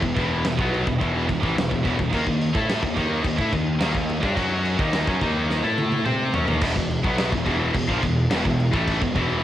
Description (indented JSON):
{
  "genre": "heavy metal",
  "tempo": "107 BPM",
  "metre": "4/4",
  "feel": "straight",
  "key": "E harmonic minor",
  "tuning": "A4 = 439 Hz",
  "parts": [
    { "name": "rich symphonic string section", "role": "sustained chords", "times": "0.0-6.6 s", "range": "E4 to D#6", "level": "-40 LUFS", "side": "left 1 dB", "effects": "none" },
    { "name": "heavy high-gain guitar", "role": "riff", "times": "0.0-9.4 s", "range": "E2 to C5", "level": "-27 LUFS", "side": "right 7 dB", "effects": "distortion" },
    { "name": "high-gain distorted guitar", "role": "riff", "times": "0.0-9.4 s", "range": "E2 to C5", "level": "-25 LUFS", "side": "left 5 dB", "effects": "distortion" },
    { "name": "fuzz picked electric bass", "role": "bass", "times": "0.0-9.4 s", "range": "E1 to C3", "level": "-26 LUFS", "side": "equal", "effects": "overdrive, tube saturation" },
    { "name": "big rock drum kit", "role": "drums", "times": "0.0-9.3 s", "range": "crash cymbal, kick drum, snare drum, toms", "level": "-25 LUFS", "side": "equal", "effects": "cassette tape" }
  ],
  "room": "little or no reverb",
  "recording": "home recording on cassette",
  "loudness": "-20 LUFS",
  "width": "side -12 dB against mid",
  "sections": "0.0-6.6 A section; 6.6-9.4 A section",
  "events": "drum fill 5.5-6.6",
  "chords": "0.0 Em; 2.1 D#5; 6.6 E5"
}